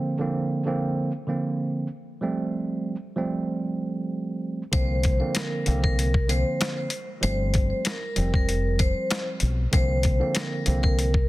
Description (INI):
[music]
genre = hip hop, boom-bap hip-hop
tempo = 96 BPM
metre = 4/4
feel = swing 54% on 16ths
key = unclear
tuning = A4 = 440 Hz
[part]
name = tine electric piano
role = accompaniment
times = 0.0-11.1 s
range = D3 to C4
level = -28 LUFS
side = right 2 dB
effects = cassette tape
[part]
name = vibraphone with hard mallets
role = melody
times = 4.7-11.3 s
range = Bb4 to C5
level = -29 LUFS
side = left 1 dB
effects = digital delay
[part]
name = deep dub fingered electric bass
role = bass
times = 4.7-11.3 s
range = F1 to C2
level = -24 LUFS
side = left 1 dB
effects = none
[part]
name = boom bap sampler-style drum kit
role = drums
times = 4.7-11.3 s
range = hi-hat, kick drum, snare drum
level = -25 LUFS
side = left 1 dB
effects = none
[part]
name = finger snaps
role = percussion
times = 5.4-10.5 s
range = none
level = -41 LUFS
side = left 8 dB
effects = none
[sound]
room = digital ambience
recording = dense, heavily limited modern master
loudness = -23 LUFS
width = side -17 dB against mid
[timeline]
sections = 0.0-4.7 A section; 4.7-11.3 B section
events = none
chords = 0.0 C9sus4; 2.2 G9sus4; 4.7 C9sus4; 7.2 G9sus4; 9.7 C9sus4